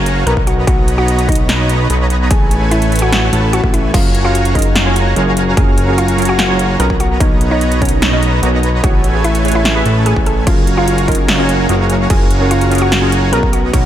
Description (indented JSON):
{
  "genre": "future bass",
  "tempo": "147 BPM",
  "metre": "4/4",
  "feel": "half-time",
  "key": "unclear",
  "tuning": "A4 = 440 Hz",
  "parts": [
    { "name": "airy breathy pad", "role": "sustained chords", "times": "0.0-13.9 s", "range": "F#3 to E#5", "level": "-26 LUFS", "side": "right 2 dB", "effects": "none" },
    { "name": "dense compressed supersaw", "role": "riff", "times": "0.0-13.9 s", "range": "A3 to A#5", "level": "-19 LUFS", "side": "right 1 dB", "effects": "cassette tape, sidechain pumping, tape echo" },
    { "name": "fat analog bass", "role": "bass", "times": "0.0-13.9 s", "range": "F#1 to B1", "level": "-15 LUFS", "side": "equal", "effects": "sidechain pumping" },
    { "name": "big-room dance drum kit", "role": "drums", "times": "0.1-13.8 s", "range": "crash cymbal, hi-hat, snare drum", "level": "-20 LUFS", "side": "equal", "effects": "none" },
    { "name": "mallet-like synth pluck", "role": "melody", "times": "0.3-13.9 s", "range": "C#4 to A#5", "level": "-20 LUFS", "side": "equal", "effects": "chorus, sidechain pumping, diffuse ambient delay" },
    { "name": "electronic kick drum", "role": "drums", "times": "0.4-13.8 s", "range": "none", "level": "-14 LUFS", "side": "equal", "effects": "none" },
    { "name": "glassy digital keys", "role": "accompaniment", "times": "3.9-13.9 s", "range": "B2 to E5", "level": "-20 LUFS", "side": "right 2 dB", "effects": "chorus, sidechain pumping, tape echo" }
  ],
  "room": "light reverb",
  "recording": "none",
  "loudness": "-10 LUFS",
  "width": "side -11 dB against mid",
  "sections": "0.0-13.9 A section",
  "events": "none",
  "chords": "0.5 Bmaj7; 2.3 Amaj7; 3.9 F#maj7; 7.0 Bmaj7; 8.8 Amaj7; 10.5 F#maj7"
}